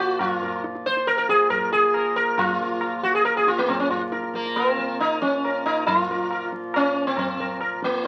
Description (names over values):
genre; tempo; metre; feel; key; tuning
indian classical, Hindustani; 138 BPM; 4/4; straight; Bb raga darbari; A4 = 440 Hz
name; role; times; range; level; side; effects
sitar; melody; 0.0-8.1 s; Bb3 to C5; -23 LUFS; equal; none
hand-pumped harmonium; drone; 0.0-8.1 s; Bb2 to F3; -34 LUFS; equal; none
tabla; percussion; 0.2-8.1 s; none; -34 LUFS; equal; none
room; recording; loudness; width
moderate studio reverb, RT60 0.9 s; very old 78 rpm record, vinyl crackle; -23 LUFS; mono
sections
0.0-5.9 A section; 5.9-8.1 B section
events
none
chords
none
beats
0.20 | 0.64 1.08 1.52 1.96 | 2.39 2.83 3.26 3.70 | 4.13 4.57 5.00 5.44 | 5.87 6.31 6.74 7.17 | 7.60 8.04